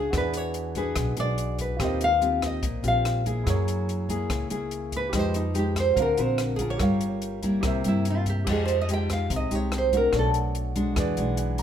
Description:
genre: bossa nova.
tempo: 144 BPM.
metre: 4/4.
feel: straight.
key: unclear.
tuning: A4 = 440 Hz.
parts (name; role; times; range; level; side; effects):
nylon-string guitar; melody; 0.0-10.3 s; Eb4 to G5; -26 LUFS; equal; none.
nylon-string guitar; accompaniment; 0.0-11.6 s; Bb2 to A#4; -28 LUFS; left 2 dB; none.
warm concert grand piano; accompaniment; 0.0-11.6 s; Db4 to Bb5; -35 LUFS; right 6 dB; none.
upright bass; bass; 0.0-11.6 s; G1 to G2; -29 LUFS; equal; none.
compact cocktail drum kit; drums; 0.1-11.6 s; crash cymbal, hi-hat, kick drum, rim click; -32 LUFS; left 1 dB; none.
room: light reverb.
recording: minimal, uncompressed stereo recording.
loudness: -23 LUFS.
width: side -9 dB against mid.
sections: 0.0-8.5 A section; 8.5-11.6 A section.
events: nylon-string guitar solo 0.0-11.6; grand piano fill 11.0-11.6.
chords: 0.1 E9; 1.8 Eb69; 3.5 Gb9; 5.1 Fm9; 6.0 D7alt; 6.8 Gm7b5; 7.6 C7; 8.5 Fm9; 10.1 Bm7; 11.0 E9.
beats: | 0.13 0.55 0.97 1.38 | 1.80 2.22 2.63 3.05 | 3.47 3.88 4.30 4.72 | 5.13 5.55 5.97 6.38 | 6.80 7.22 7.63 8.05 | 8.47 8.88 9.30 9.72 | 10.13 10.55 10.97 11.39.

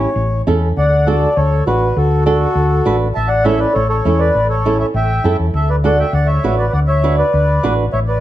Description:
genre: latin.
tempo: 201 BPM.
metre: 4/4.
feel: straight.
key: D major.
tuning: A4 = 437 Hz.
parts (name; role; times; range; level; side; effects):
mellow accordion; melody; 0.0-8.2 s; F#4 to A5; -17 LUFS; equal; none.
flamenco guitar; accompaniment; 0.0-7.8 s; C#4 to B4; -20 LUFS; right 4 dB; none.
hollow-body short-scale fingered electric bass; bass; 0.0-8.2 s; A1 to F#2; -16 LUFS; left 1 dB; none.
room: moderate large studio reverb, RT60 1.4 s.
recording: none.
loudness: -12 LUFS.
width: side -13 dB against mid.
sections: 0.8-8.2 A section.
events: none.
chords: 0.0 A; 0.8 D; 3.2 A.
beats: 0.17 0.47 | 0.77 1.06 1.36 1.66 | 1.96 2.26 2.56 2.86 | 3.15 3.45 3.75 4.05 | 4.35 4.65 4.95 5.25 | 5.54 5.84 6.14 6.44 | 6.74 7.04 7.33 7.63 | 7.93.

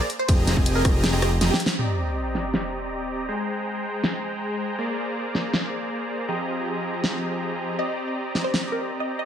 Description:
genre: future bass.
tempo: 160 BPM.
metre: 4/4.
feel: half-time.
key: C minor.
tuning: A4 = 440 Hz.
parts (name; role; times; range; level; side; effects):
wide unison pluck; melody; 0.0-1.6, 7.8-9.3 s; G4 to Eb5; -30 LUFS; equal; sidechain pumping, digital delay.
supersaw chords; riff; 0.0-9.3 s; F3 to Bb5; -27 LUFS; equal; sidechain pumping, low-pass filter, digital delay.
big-room dance drum kit; drums; 0.1-8.6 s; crash cymbal, hi-hat, ride cymbal, rim click, snare drum; -26 LUFS; equal; low-pass filter on hats, low-pass filter on snare, low-pass filter on cymbals.
fat analog bass; bass; 0.3-1.5 s; F1; -24 LUFS; equal; sidechain pumping.
electronic kick drum; drums; 0.3-0.9 s; none; -20 LUFS; equal; none.
sub drop; sound effects; 1.8-3.3 s; none; -29 LUFS; equal; none.
room: light reverb, digital ambience.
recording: none.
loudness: -22 LUFS.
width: side -9 dB against mid.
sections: 0.0-1.8 A section; 1.8-9.3 B section.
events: drop 0.0-1.8; kick drops out 1.4-1.8; drum fill 1.4-1.8; band accent 1.7; impact 1.8-3.3; filter sweep on drum 1.8-9.3.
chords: 0.3 Fm11; 1.8 Cm7; 3.3 Abmaj7; 4.8 Bb7; 6.3 Fm11; 7.8 Cm7.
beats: | 0.29 0.66 1.04 1.41 | 1.79 2.16 2.54 2.91 | 3.29 3.66 4.04 4.41 | 4.79 5.16 5.54 5.91 | 6.29 6.66 7.04 7.41 | 7.79 8.16 8.54 8.91.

